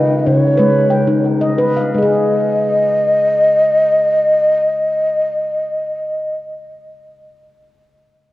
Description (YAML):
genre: world meditative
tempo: free time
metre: none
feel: none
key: Ab kumoi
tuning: A4 = 440 Hz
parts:
  - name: breathy mellow bansuri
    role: melody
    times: 0.0-6.3 s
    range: Db5 to Eb5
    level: -14 LUFS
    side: equal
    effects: tape echo
  - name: handpan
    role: arpeggios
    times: 0.0-6.5 s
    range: Db3 to G5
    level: -15 LUFS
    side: left 1 dB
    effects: tape echo
room: wet echo chamber reverb, RT60 1.7 s, small room ambience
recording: worn, warbling old tape, cassette tape, warbly pitch drift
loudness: -12 LUFS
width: side -16 dB against mid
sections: 0.0-1.9 A section; 1.9-7.7 B section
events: slowing down 0.0-1.9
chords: 0.0 Db5; 1.9 Ab5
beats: free time